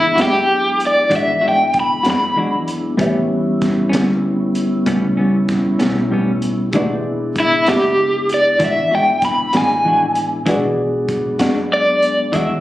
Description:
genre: slow blues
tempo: 64 BPM (dotted quarters)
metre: 12/8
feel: straight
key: E mixolydian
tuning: A4 = 438 Hz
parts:
  - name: overdriven semi-hollow guitar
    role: melody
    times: 0.0-12.6 s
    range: E4 to B5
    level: -14 LUFS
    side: equal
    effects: tremolo, tape echo
  - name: dark upright piano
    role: accompaniment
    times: 0.0-12.6 s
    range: G#3 to E5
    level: -24 LUFS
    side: right 1 dB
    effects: none
  - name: mellow tonewheel organ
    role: sustained chords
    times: 0.0-12.6 s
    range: F#3 to G4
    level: -21 LUFS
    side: equal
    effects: slow rotary speaker
  - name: vintage muted fingered electric bass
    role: bass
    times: 0.0-12.6 s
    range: E1 to G#2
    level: -28 LUFS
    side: equal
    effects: none
  - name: clean electric guitar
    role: accompaniment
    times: 0.2-12.5 s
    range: A2 to F#4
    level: -20 LUFS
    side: left 2 dB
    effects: harmonic tremolo
  - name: crunchy breakbeat drum kit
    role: drums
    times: 0.2-12.5 s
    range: hi-hat, kick drum, snare drum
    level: -23 LUFS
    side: equal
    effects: none
room: light reverb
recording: recorded on a phone in the room, club reverb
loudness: -14 LUFS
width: side -15 dB against mid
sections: 0.0-12.6 A section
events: none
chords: 0.0 E9; 3.0 A9; 6.7 E9

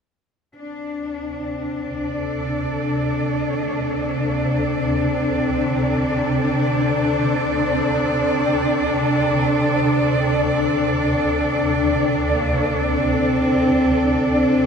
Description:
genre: dark ambient drone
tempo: free time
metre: none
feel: none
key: unclear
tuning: A4 = 440 Hz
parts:
  - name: warm horsehead fiddle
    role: melody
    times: 0.6-14.7 s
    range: A3 to D4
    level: -24 LUFS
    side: equal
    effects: tape echo
  - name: rich studio cello section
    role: sustained chords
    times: 0.6-14.7 s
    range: D4 to D5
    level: -20 LUFS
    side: left 1 dB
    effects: none
  - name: swarming drone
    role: drone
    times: 1.3-14.7 s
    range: D2 to C3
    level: -23 LUFS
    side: right 1 dB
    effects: built-in reverb, phaser
room: wet cathedral reverb, RT60 6.2 s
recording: none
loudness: -18 LUFS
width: side -6 dB against mid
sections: 0.6-14.7 A section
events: fade-in on horsehead fiddle 0.6-14.7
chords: 0.6 D5

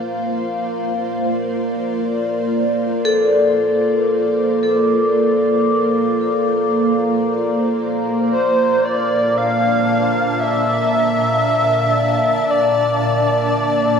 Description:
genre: ambient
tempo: free time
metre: none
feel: none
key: Bb lydian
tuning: A4 = 437 Hz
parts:
  - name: ethereal airy pad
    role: sustained chords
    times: 0.0-14.0 s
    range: Bb2 to A5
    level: -23 LUFS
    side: equal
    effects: ensemble chorus, built-in reverb, tremolo
  - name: overtone-sweeping drone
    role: drone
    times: 0.0-14.0 s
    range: Bb3 to D5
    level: -19 LUFS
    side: equal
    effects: chorus, built-in reverb, phaser
  - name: vibraphone with medium hard mallets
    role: arpeggios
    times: 3.1-8.3 s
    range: A4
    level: -19 LUFS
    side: left 1 dB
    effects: tape echo
  - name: breathy flute-like synth lead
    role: melody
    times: 8.3-14.0 s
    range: C5 to F5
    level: -16 LUFS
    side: equal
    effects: analog chorus, tape echo
room: wet spring reverb, RT60 2.5 s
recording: echo-heavy mix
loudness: -15 LUFS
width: side -6 dB against mid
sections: 0.0-14.0 A section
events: fade-in on ambient pad 0.0-14.0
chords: 0.0 Bb

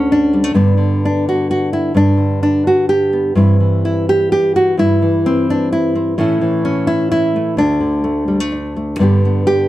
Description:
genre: folk, solo fingerstyle acoustic guitar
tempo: 128 BPM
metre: 3/4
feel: rubato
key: unclear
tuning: A4 = 441 Hz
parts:
  - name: nylon-string guitar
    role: solo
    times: 0.0-9.7 s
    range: D2 to G4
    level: -12 LUFS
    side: equal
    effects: none
room: light reverb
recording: dark, warm production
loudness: -12 LUFS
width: side -15 dB against mid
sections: 0.0-9.0 A section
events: none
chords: 0.0 D5; 0.6 G; 3.4 C/G; 6.2 A; 7.6 D5; 9.0 G

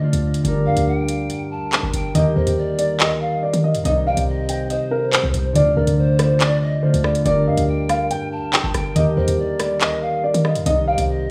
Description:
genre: hip hop, drill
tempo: 141 BPM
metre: 4/4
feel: half-time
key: unclear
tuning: A4 = 440 Hz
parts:
  - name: concert harp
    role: accompaniment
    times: 0.0-11.3 s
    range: C3 to Bb4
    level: -23 LUFS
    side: equal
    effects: low-pass filter
  - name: glass harmonica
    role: sustained chords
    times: 0.0-11.3 s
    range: G3 to D5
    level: -33 LUFS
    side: equal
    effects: none
  - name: short 808-style bass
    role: bass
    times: 0.0-11.3 s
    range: G1 to Eb3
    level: -26 LUFS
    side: equal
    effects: none
  - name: drill drum kit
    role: drums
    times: 0.1-11.1 s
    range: handclaps, hi-hat, rim click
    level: -24 LUFS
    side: equal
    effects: none
  - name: mellow polished pan flute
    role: second line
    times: 0.7-11.3 s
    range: C5 to A5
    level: -31 LUFS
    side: equal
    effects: digital delay
  - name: dark concert grand piano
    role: melody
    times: 2.1-11.0 s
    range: Bb4 to G5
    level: -24 LUFS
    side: equal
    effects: low-pass filter
room: light reverb, small room ambience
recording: rough home demo mix, studio reverb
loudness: -19 LUFS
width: mono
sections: 0.0-11.3 A section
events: break 0.0-2.1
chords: 0.4 Gm; 2.1 Eb; 3.9 Cm; 5.6 Dm; 7.3 Gm; 9.0 Eb; 10.7 Cm

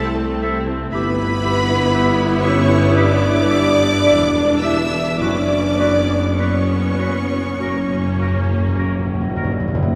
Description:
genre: classical, slow romantic movement for symphony orchestra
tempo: 49-61 BPM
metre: 4/4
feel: rubato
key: unclear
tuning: A4 = 440 Hz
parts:
  - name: rich studio violin section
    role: melody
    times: 0.0-8.8 s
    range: A5 to E6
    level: -28 LUFS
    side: equal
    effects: none
  - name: clear clarinet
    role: second line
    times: 0.0-9.5 s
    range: F#4 to A4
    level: -33 LUFS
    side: equal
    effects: none
  - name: mellow hollow large flute ensemble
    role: second line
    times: 0.0-8.8 s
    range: A4 to E5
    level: -27 LUFS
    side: equal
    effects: none
  - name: rich studio violin section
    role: second line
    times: 0.0-8.7 s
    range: A4 to E5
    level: -29 LUFS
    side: equal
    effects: none
  - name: warm oboe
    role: second line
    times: 0.0-9.5 s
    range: A#4 to E5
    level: -32 LUFS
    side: equal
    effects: none
  - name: clear studio viola section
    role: accompaniment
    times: 0.0-10.0 s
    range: A3 to E4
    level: -25 LUFS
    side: equal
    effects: none
  - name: mellow French horn section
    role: sustained chords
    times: 0.0-10.0 s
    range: A3 to E4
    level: -25 LUFS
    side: equal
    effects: none
  - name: bright studio double bass section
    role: bass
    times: 0.0-9.7 s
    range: E1 to C2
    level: -27 LUFS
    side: equal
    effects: none
  - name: clear studio cello section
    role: bass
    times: 0.0-10.0 s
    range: C2 to G2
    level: -27 LUFS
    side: equal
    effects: none
  - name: dark tuba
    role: bass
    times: 0.0-9.7 s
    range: E1 to C2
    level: -28 LUFS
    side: equal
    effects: none
  - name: timpani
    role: percussion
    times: 5.2-9.9 s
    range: F#2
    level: -26 LUFS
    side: equal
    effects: none
room: wet church reverb, RT60 3.7 s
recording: none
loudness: -17 LUFS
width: mono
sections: 0.0-9.9 A section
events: timpani fill 7.6-9.9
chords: 0.0 Am/C; 0.9 Em/G; 5.2 F#sus4; 7.6 F#

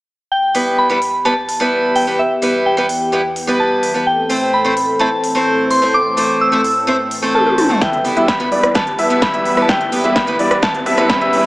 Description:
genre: EDM, festival progressive house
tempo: 128 BPM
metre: 4/4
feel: straight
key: E minor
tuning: A4 = 440 Hz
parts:
  - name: soft synth bell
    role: melody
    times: 0.3-11.5 s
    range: E5 to E6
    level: -17 LUFS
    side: equal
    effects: chorus, digital delay
  - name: lush unison pad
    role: sustained chords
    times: 0.3-11.5 s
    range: E2 to B4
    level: -22 LUFS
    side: equal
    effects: chorus, sidechain pumping
  - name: picked steel-string acoustic guitar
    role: accompaniment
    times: 0.5-11.4 s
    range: G3 to C5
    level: -18 LUFS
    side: right 1 dB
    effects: sidechain pumping
  - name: big-room dance drum kit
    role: drums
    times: 0.5-11.4 s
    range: hi-hat, rim click, snare drum, toms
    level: -21 LUFS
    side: equal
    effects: overdrive
  - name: dark baby grand piano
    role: arpeggios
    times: 7.8-11.5 s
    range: D5 to E5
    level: -19 LUFS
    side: equal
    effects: sidechain pumping, low-pass filter, digital delay
  - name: dense compressed supersaw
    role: riff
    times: 7.8-11.5 s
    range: G3 to E5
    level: -21 LUFS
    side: equal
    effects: sidechain pumping, low-pass filter, digital delay
  - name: fat analog bass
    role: bass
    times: 7.8-11.5 s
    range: none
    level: barely audible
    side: none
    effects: none
  - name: electronic kick drum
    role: drums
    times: 7.8-11.2 s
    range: none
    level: -21 LUFS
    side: equal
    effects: overdrive
  - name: riser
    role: sound effects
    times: 9.9-11.5 s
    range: none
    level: -28 LUFS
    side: equal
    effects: none
room: moderate lush hall reverb, RT60 1.9 s, digital ambience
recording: small speaker sound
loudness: -13 LUFS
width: side -19 dB against mid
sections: 0.3-7.8 A section; 7.8-11.5 B section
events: filter sweep on analog synth pad 0.3-7.8; drum fill 7.3-7.8, 7.8-11.5; build-up 7.8-11.5; filter sweep on supersaw synth 7.8-11.5; filter sweep on grand piano 7.8-11.5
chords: 0.3 Em; 4.1 Am; 7.8 Em

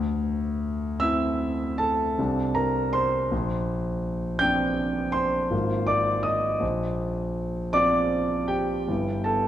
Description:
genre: classical, impressionist solo piano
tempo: 50-55 BPM (dotted quarters)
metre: 9/8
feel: rubato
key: unclear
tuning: A4 = 440 Hz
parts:
  - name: warm concert grand piano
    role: solo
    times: 0.0-9.5 s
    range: G1 to G6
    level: -23 LUFS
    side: equal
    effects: none
room: moderate concert hall reverb, RT60 1.9 s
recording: none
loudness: -23 LUFS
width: side -11 dB against mid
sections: 0.0-9.5 A section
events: none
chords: 0.0 Dsus2; 2.2 Csus2; 3.3 Bb69; 5.5 Ab69; 6.6 Bb69; 8.9 G69

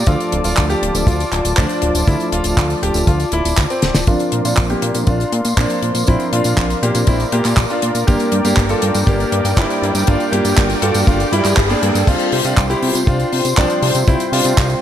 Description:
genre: italo disco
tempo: 120 BPM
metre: 4/4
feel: straight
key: unclear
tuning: A4 = 441 Hz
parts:
  - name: warm analog pad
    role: sustained chords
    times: 0.0-14.8 s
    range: F4 to D6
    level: -22 LUFS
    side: left 2 dB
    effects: chorus
  - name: fat analog bass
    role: bass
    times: 0.0-14.8 s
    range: D1 to C3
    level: -20 LUFS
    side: equal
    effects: tube saturation
  - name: bright grand piano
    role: melody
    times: 0.1-14.7 s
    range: F3 to A4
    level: -20 LUFS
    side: equal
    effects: low-pass filter, digital delay
  - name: tine electric piano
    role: stabs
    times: 0.1-14.8 s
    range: F3 to D5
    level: -24 LUFS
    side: right 2 dB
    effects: medium tremolo, low-pass filter
  - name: damped 70s drum kit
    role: drums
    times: 0.1-14.8 s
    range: crash cymbal, handclaps, hi-hat, snare drum, tambourine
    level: -21 LUFS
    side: equal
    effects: none
  - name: kick drum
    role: drums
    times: 0.1-14.7 s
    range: none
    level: -14 LUFS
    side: equal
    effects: none
  - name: riser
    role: sound effects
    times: 6.8-12.1 s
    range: none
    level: -26 LUFS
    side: equal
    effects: none
room: light reverb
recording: none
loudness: -13 LUFS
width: side -10 dB against mid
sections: 0.0-4.1 A section; 4.1-12.1 B section; 12.1-14.8 C section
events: drum fill 3.8; filter sweep on grand piano 4.1-12.1; riser 6.8-12.1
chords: 0.1 Dm; 4.1 Bbadd9; 8.1 Gm; 12.1 Csus4

